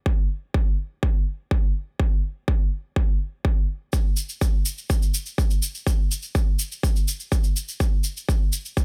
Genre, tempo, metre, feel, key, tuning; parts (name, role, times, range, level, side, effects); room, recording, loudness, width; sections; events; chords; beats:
house; 124 BPM; 4/4; straight
electronic kick drum; drums; 0.1-8.8 s; -23 LUFS; equal
cabasa; percussion; 3.9-8.8 s; -33 LUFS; equal
little or no reverb; -24 LUFS; mono
0.0-8.8 A section
| 0.06 0.54 1.03 1.51 | 2.00 2.48 2.96 3.45 | 3.93 4.42 4.90 5.38 | 5.87 6.35 6.83 7.32 | 7.80 8.29 8.77